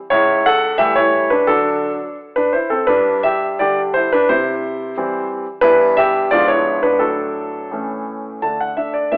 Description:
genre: classical-period piano sonatina.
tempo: 86 BPM.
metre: 2/4.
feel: rubato.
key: D major from 5.6 s.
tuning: A4 = 440 Hz.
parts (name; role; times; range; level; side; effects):
clear baby grand piano; solo; 0.1-9.2 s; C#2 to A5; -17 LUFS; equal; none.
room: moderate recital hall reverb, RT60 1.7 s.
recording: worn, warbling old tape, cassette tape, warbly pitch drift, telephone sound.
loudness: -17 LUFS.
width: mono.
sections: 0.0-8.4 A section.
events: none.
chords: 0.1 A7/C#; 1.5 D; 2.9 G5; 4.3 C; 5.6 Em/G; 6.3 G#dim7; 7.0 D/A; 7.7 A; 8.4 D5.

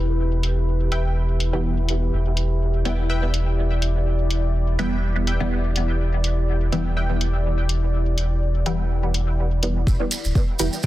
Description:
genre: dub techno.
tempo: 124 BPM.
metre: 4/4.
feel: swing 55% on 16ths.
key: E minor.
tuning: A4 = 440 Hz.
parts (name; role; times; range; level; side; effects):
deep dark ambient pad; sustained chords; 0.0-10.9 s; E4 to D5; -30 LUFS; left 2 dB; chorus, built-in reverb, vintage 12-bit sampler grit, sidechain pumping.
soft dub sub bass; bass; 0.0-10.7 s; D1 to E1; -21 LUFS; equal; sidechain pumping.
electronic hi-hat; drums; 0.4-10.7 s; none; -29 LUFS; left 1 dB; low-pass filter on hats, low-pass filter on room.
filtered dub chord stab; riff; 0.9-10.9 s; B4 to G5; -34 LUFS; left 1 dB; analog chorus, sidechain pumping, dub echo.
filtered dub chord stab; stabs; 1.5-10.8 s; E3 to B3; -28 LUFS; right 1 dB; phaser, sidechain pumping, dub echo.
electronic kick drum; drums; 9.9-10.9 s; none; -19 LUFS; equal; none.
maracas; percussion; 9.9-10.9 s; none; -30 LUFS; right 3 dB; none.
room: little or no reverb.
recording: dense, heavily limited modern master.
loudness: -20 LUFS.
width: side -15 dB against mid.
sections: 0.0-9.9 A section.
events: none.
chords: 0.0 Em.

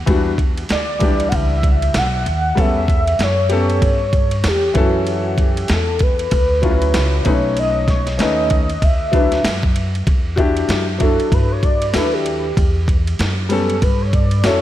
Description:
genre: hip hop, jazz-hop.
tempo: 96 BPM.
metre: 4/4.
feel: swing 58% on 16ths.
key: E dorian.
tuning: A4 = 444 Hz.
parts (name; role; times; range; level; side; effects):
upright bass; bass; 0.0-14.6 s; B1 to G2; -20 LUFS; equal; none.
clear upright piano; accompaniment; 0.1-14.6 s; E3 to B4; -21 LUFS; left 3 dB; none.
boom bap sampler-style drum kit; drums; 0.1-14.6 s; hi-hat, kick drum, ride cymbal, snare drum; -18 LUFS; equal; none.
warm velvety synth lead; melody; 0.7-14.6 s; F#4 to F#5; -20 LUFS; equal; chorus, tape echo.
room: light reverb, digital ambience.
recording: vinyl crackle.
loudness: -14 LUFS.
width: side -13 dB against mid.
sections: 0.0-10.1 A section; 10.1-14.6 B section.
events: soft synth lead solo 10.1-14.6.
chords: 0.1 Em9; 2.6 A9/E; 4.8 F#m7; 7.3 B9; 8.8 D69; 10.1 Em9; 12.6 A7/E.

